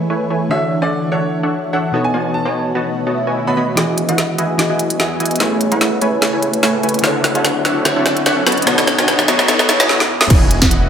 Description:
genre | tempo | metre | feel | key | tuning
future bass | 147 BPM | 4/4 | swing 54% on 16ths, half-time | E major | A4 = 441 Hz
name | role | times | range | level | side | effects
glassy digital keys | accompaniment | 0.0-10.3 s | B2 to D#5 | -21 LUFS | left 1 dB | chorus, sidechain pumping, tape echo
ethereal airy pad | sustained chords | 0.0-10.9 s | C#3 to C#5 | -25 LUFS | right 1 dB | ensemble chorus, built-in reverb, phaser, sidechain pumping
supersaw stab | riff | 0.0-10.9 s | E3 to B5 | -18 LUFS | equal | sidechain pumping, low-pass filter, tape echo
bright grand piano | melody | 0.5-3.7 s | C#5 to B5 | -23 LUFS | right 1 dB | sidechain pumping, analog delay
swell, riser and noise sweep | sound effects | 3.1-10.3 s | none | -24 LUFS | right 1 dB | none
wide detuned saw bass | bass | 3.8-10.9 s | E1 to A2 | -25 LUFS | equal | none
trap drum kit | drums | 3.8-10.8 s | crash cymbal, hi-hat, snare drum | -16 LUFS | equal | studio reverb
electronic kick drum | drums | 10.3-10.7 s | none | -12 LUFS | equal | studio reverb
room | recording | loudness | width
wet plate reverb, RT60 1.3 s, digital ambience | dreamy mix soaked in reverb, high-pass filter | -13 LUFS | side -8 dB against mid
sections
0.0-3.8 A section; 3.8-10.3 B section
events
swell 3.1-3.8; build-up 3.8-10.3; drum fill 3.8-9.9, 9.9-10.3; filter sweep on supersaw synth 3.8-10.3; riser 4.9-9.9; noise sweep 8.7-10.3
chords
0.0 Amaj7; 0.5 Dmaj9; 1.9 B7; 3.8 Emaj7; 5.4 Amaj7; 7.0 Dmaj9; 8.5 B7; 10.3 Emaj7

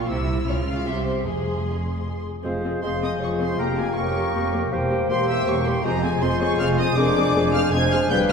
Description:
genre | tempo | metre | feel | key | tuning
quick classical-period movement for symphony orchestra | 158 BPM | 3/4 | straight | F minor | A4 = 439 Hz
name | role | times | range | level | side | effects
warm studio violin section | melody | 0.0-8.3 s | Ab5 to Ab6 | -29 LUFS | left 2 dB | none
warm studio viola section | accompaniment | 0.0-8.3 s | Bb3 to Ab4 | -29 LUFS | equal | none
warm studio cello section | bass | 0.0-8.3 s | E2 to Db3 | -29 LUFS | right 1 dB | none
warm studio double bass section | bass | 0.0-8.3 s | E1 to Db2 | -27 LUFS | right 2 dB | none
warm studio violin section | second line | 0.5-8.3 s | Ab4 to Ab5 | -33 LUFS | left 3 dB | none
clear oboe | second line | 2.4-8.3 s | Bb4 to C5 | -32 LUFS | right 1 dB | none
silver concert flute | second line | 2.4-8.3 s | F5 to Ab5 | -32 LUFS | left 2 dB | none
warm clarinet | second line | 2.4-8.3 s | D4 to Ab4 | -28 LUFS | left 2 dB | none
warm bassoon | accompaniment | 2.4-8.3 s | G3 to Bb3 | -29 LUFS | right 1 dB | none
warm French horn section | sustained chords | 2.4-8.3 s | F4 to C5 | -27 LUFS | left 3 dB | none
room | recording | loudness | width
wet concert hall reverb, RT60 1.9 s | none | -20 LUFS | side -6 dB against mid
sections
0.0-2.4 A section; 2.4-8.3 A section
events
none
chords
0.1 C; 0.5 Db; 0.9 C; 1.3 Fm; 3.6 Gm7b5/F; 4.7 C7/E; 5.8 Fm; 7.0 Dm7b5/F

